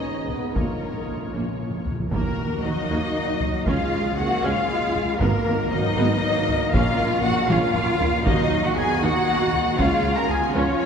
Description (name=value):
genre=cinematic, epic orchestral film score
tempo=78 BPM (dotted quarters)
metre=6/8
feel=straight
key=Eb minor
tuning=A4 = 440 Hz
part: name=rich symphonic violin section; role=melody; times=0.0-10.9 s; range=Bb4 to Bb5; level=-31 LUFS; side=left 4 dB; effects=none
part: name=warm symphonic violin section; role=second line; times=0.0-10.9 s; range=Bb4 to Bb5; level=-29 LUFS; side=left 3 dB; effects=none
part: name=dark symphonic viola section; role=accompaniment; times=0.0-10.9 s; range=F3 to Bb4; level=-30 LUFS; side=right 1 dB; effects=none
part: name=bright trombone section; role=sustained chords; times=0.0-10.9 s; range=F2 to F4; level=-33 LUFS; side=right 3 dB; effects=none
part: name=dark French horn section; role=sustained chords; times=0.0-10.9 s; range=Eb3 to Db4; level=-30 LUFS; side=left 3 dB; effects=none
part: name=taiko ensemble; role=drums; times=0.3-10.3 s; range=none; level=-29 LUFS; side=equal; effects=none
part: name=dark tuba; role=bass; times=0.6-10.6 s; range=Ab1 to Eb2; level=-30 LUFS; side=right 2 dB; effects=none
part: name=warm symphonic cello section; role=bass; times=0.6-10.9 s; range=Bb2 to Bb4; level=-27 LUFS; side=right 2 dB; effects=none
part: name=warm symphonic double bass section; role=bass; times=0.6-10.6 s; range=Ab1 to Eb2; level=-31 LUFS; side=right 2 dB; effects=none
part: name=timpani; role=percussion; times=0.6-2.1, 6.7-9.0 s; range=Bb2 to Eb3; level=-33 LUFS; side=equal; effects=none
part: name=mellow silver concert flute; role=second line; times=2.1-10.9 s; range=Bb4 to Bb5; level=-31 LUFS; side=equal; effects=none
room=wet cathedral reverb, RT60 4.7 s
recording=recorded in a church or concert hall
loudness=-20 LUFS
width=side -7 dB against mid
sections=0.0-2.1 A section; 2.1-10.9 B section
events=timpani fill 0.6-2.1; drum fill 7.5-8.3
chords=0.0 Abm; 0.6 Bbm; 2.1 Ebm; 3.7 Db; 5.2 Abmadd9; 6.7 Bbm; 8.3 Ebm; 9.8 Db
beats=| 0.55 1.34 | 2.12 2.90 | 3.67 4.44 | 5.21 5.98 | 6.74 7.50 | 8.26 9.02 | 9.79 10.55